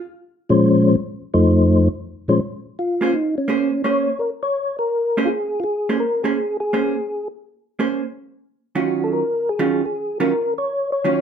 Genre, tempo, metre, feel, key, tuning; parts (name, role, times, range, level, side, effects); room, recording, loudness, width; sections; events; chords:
jazz; 167 BPM; 4/4; swing 66% on 8ths; Bb minor; A4 = 441 Hz
percussive tonewheel organ; melody; 0.5-11.2 s; F2 to Db5; -18 LUFS; left 1 dB; slow rotary speaker, chorus vibrato
vintage hollow-body jazz guitar; accompaniment; 3.0-11.2 s; Eb3 to C5; -22 LUFS; right 6 dB
moderate club reverb, RT60 0.8 s; -18 LUFS; side -8 dB against mid
0.0-2.4 A section; 2.4-11.2 B section
0.0 Bbm9; 1.0 F7; 2.4 Bbm9; 8.2 Ebm9